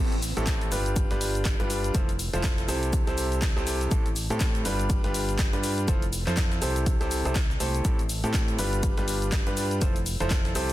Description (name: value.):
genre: piano house.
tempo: 122 BPM.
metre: 4/4.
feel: swing 58% on 16ths.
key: unclear.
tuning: A4 = 440 Hz.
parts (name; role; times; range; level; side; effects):
bright concert grand piano; riff; 0.0-10.7 s; A2 to C5; -29 LUFS; equal; sidechain pumping, digital delay.
modern bright fingered electric bass; bass; 0.0-10.7 s; F1 to A2; -30 LUFS; equal; sidechain pumping.
punchy analog drum machine; drums; 0.1-10.7 s; cabasa, handclaps, hi-hat; -33 LUFS; left 1 dB; none.
breakbeat sampler-style drum kit; drums; 0.2-10.7 s; hi-hat, shaker, snare drum; -41 LUFS; left 1 dB; none.
electronic kick drum; drums; 0.5-10.4 s; none; -26 LUFS; equal; none.
room: little or no reverb.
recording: dense, heavily limited modern master.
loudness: -24 LUFS.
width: side -15 dB against mid.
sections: 0.0-10.7 A section.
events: none.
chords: 0.0 Am7; 0.7 G7; 1.9 Fmaj7; 2.9 C6; 3.9 Am7; 4.7 G7; 5.9 Fmaj7; 6.9 C6; 7.8 Am7; 8.6 G7; 9.8 Fmaj7.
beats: 0.47 0.96 1.46 | 1.95 2.44 2.93 3.42 | 3.91 4.41 4.90 5.39 | 5.88 6.37 6.87 7.36 | 7.85 8.34 8.83 9.32 | 9.82 10.31.